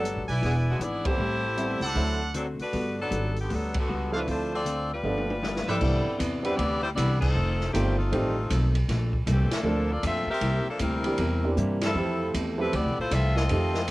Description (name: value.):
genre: jazz, big band swing.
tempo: 156 BPM.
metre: 4/4.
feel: swing 64% on 8ths.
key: G major, C major from 5.8 s.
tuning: A4 = 440 Hz.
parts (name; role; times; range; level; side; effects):
edgy saxophone section; melody; 0.0-13.9 s; D3 to E5; -30 LUFS; left 1 dB; cassette tape.
vintage hollow-body jazz guitar; accompaniment; 0.0-13.9 s; F2 to A4; -34 LUFS; left 2 dB; cassette tape.
warm grand piano; accompaniment; 0.0-13.7 s; E3 to A4; -30 LUFS; right 2 dB; cassette tape.
upright bass; bass; 0.0-13.9 s; E1 to G2; -28 LUFS; equal; none.
open jazz drum kit; drums; 0.0-13.9 s; crash cymbal, hi-hat, kick drum, ride cymbal, snare drum, toms; -33 LUFS; equal; cassette tape.
brilliant trumpet section; stabs; 0.3-5.8 s; D4 to Ab5; -31 LUFS; right 1 dB; cassette tape.
room: light reverb.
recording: home recording on cassette.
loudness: -24 LUFS.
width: side -19 dB against mid.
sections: 0.0-5.8 A section; 5.8-13.9 B section.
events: band accent 1.0, 3.7, 7.2, 9.5, 11.8; drum fill 5.0-5.8, 11.6-12.0.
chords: 0.4 E7; 1.2 Am7; 2.0 D7; 2.7 Gmaj9; 4.3 Dm7; 5.0 G7; 5.8 Cmaj9; 7.3 F7; 8.9 Bbmaj7; 10.4 C7; 12.0 Fmaj7.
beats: 0.03 0.42 0.81 | 1.19 1.57 1.96 2.35 | 2.73 3.12 3.50 3.88 | 4.27 4.65 5.04 5.42 | 5.81 6.19 6.58 6.96 | 7.34 7.73 8.11 8.50 | 8.88 9.27 9.65 10.03 | 10.42 10.80 11.19 11.57 | 11.96 12.34 12.72 13.11 | 13.49 13.88.